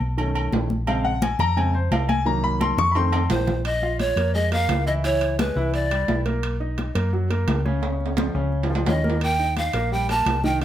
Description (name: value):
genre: Afro-Cuban jazz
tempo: 172 BPM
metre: 4/4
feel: straight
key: Bb minor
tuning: A4 = 440 Hz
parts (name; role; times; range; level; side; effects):
- hollow-body short-scale fingered electric bass; bass; 0.0-10.6 s; Bb1 to F#2; -24 LUFS; equal; none
- congas; percussion; 0.0-10.6 s; none; -28 LUFS; left 1 dB; none
- clear concert grand piano; accompaniment; 0.2-10.6 s; Db3 to Db6; -26 LUFS; left 1 dB; none
- agogo bells and timbales; percussion; 0.2-10.6 s; none; -29 LUFS; right 3 dB; none
- breathy pan flute; melody; 3.3-6.2, 8.9-10.6 s; Cb5 to A5; -24 LUFS; right 1 dB; none
room: moderate studio reverb, RT60 0.7 s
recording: none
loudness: -20 LUFS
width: side -11 dB against mid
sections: 0.0-3.7 A section; 3.7-10.6 B section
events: grand piano solo 0.0-3.7; drum fill 2.6-3.7, 7.8-9.2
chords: 0.2 B9; 0.9 Bbm9; 2.3 Cm7b5; 3.0 F7; 3.7 Bbm7; 5.0 Dbm7; 5.7 C9; 6.4 Bmaj7; 7.8 Dbadd9; 9.2 Eb